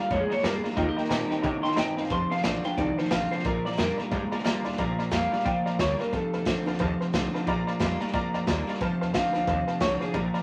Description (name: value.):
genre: rockabilly.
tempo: 179 BPM.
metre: 4/4.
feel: swing 60% on 8ths.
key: Bb major.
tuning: A4 = 440 Hz.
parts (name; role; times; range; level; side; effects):
electric guitar through a small old amp; melody; 0.0-7.1, 9.1-10.1 s; F4 to C6; -32 LUFS; equal; none.
honky-tonk upright piano; accompaniment; 0.0-10.4 s; C5 to C6; -36 LUFS; equal; none.
picked steel-string acoustic guitar; accompaniment; 0.0-10.4 s; F2 to G4; -40 LUFS; equal; none.
electric guitar through a small old amp; riff; 0.0-10.4 s; F2 to Db4; -32 LUFS; equal; none.
upright bass; bass; 0.1-10.4 s; F1 to C3; -36 LUFS; equal; none.
vintage drum kit; drums; 0.1-10.4 s; hi-hat, kick drum, snare drum; -34 LUFS; equal; none.
room: light reverb.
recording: vinyl crackle.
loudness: -27 LUFS.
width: mono.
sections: 0.0-4.8 A section; 4.8-10.4 B section.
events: none.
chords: 0.0 Bb; 0.8 Eb; 2.1 F7; 3.5 Bb; 6.1 F7; 7.5 Bb; 8.8 F7.